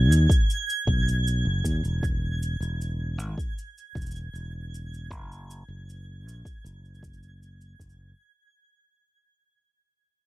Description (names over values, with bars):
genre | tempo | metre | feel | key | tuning
folktronica | 78 BPM | 4/4 | straight | unclear | A4 = 441 Hz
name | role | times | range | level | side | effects
fingered electric bass | bass | 0.0-8.1 s | E1 to D#2 | -26 LUFS | equal | none
twinkling granular texture | texture | 0.0-8.2 s | G#6 | -33 LUFS | right 4 dB | built-in reverb
cabasa | drums | 0.1-8.0 s | none | -40 LUFS | right 2 dB | none
electronic kick drum | drums | 0.3-7.9 s | none | -25 LUFS | equal | none
room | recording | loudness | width
little or no reverb | dry, close 1970s-style studio recording | -24 LUFS | side -17 dB against mid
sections
0.0-8.2 A section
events
fade-out 0.0-8.2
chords
0.0 B; 2.0 E; 5.1 N.C.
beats
0.49 1.26 | 2.02 2.79 3.56 4.33 | 5.10 5.87 6.64 7.41